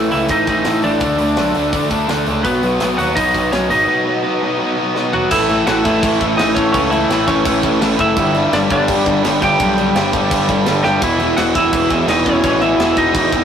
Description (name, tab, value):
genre	punk rock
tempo	168 BPM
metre	4/4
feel	straight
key	unclear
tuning	A4 = 440 Hz
part	lightly driven lead guitar	melody	0.0-13.4 s	B3 to G5	-18 LUFS	right 1 dB	tape echo
part	distorted electric guitar	riff	0.0-13.4 s	E2 to D4	-20 LUFS	right 4 dB	overdrive
part	overdriven electric guitar	riff	0.0-13.4 s	E2 to D4	-18 LUFS	left 3 dB	none
part	growling picked electric bass	bass	0.0-13.4 s	E1 to D#2	-24 LUFS	equal	overdrive
part	tight metal drum kit	drums	0.1-13.4 s	crash cymbal, hi-hat, kick drum, snare drum, toms	-23 LUFS	equal	none
part	biting overdriven guitar	riff	5.3-13.4 s	A2 to B4	-23 LUFS	equal	none
room	moderate studio reverb, RT60 0.6 s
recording	rough rehearsal-room recording, warm saturation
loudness	-13 LUFS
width	side -8 dB against mid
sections	0.0-5.3 A section; 5.3-13.4 B section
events	drum fill 5.0-5.3, 10.8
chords	0.0 A; 1.0 D5; 2.5 B; 5.3 A; 8.2 G; 11.0 E